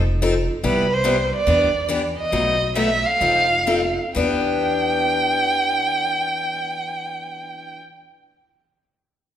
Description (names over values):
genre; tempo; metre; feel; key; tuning
acoustic string swing (jazz manouche); 122-145 BPM; 4/4; swing 64% on 8ths; E minor; A4 = 440 Hz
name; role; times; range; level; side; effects
picked steel-string acoustic guitar; accompaniment; 0.0-7.8 s; B2 to A4; -23 LUFS; left 3 dB; none
upright bass; bass; 0.0-7.8 s; F1 to E2; -26 LUFS; equal; none
warm violin; melody; 0.7-7.8 s; B4 to G5; -20 LUFS; right 2 dB; none
room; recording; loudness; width
wet recital hall reverb, RT60 1.4 s; recorded in a church or concert hall; -18 LUFS; side -10 dB against mid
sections
0.0-4.2 A section; 4.2-8.1 B section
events
slowing down 0.6-4.2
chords
0.0 F7; 0.6 Cmaj7; 1.5 Em7; 2.3 B7; 3.2 F7; 4.2 Em7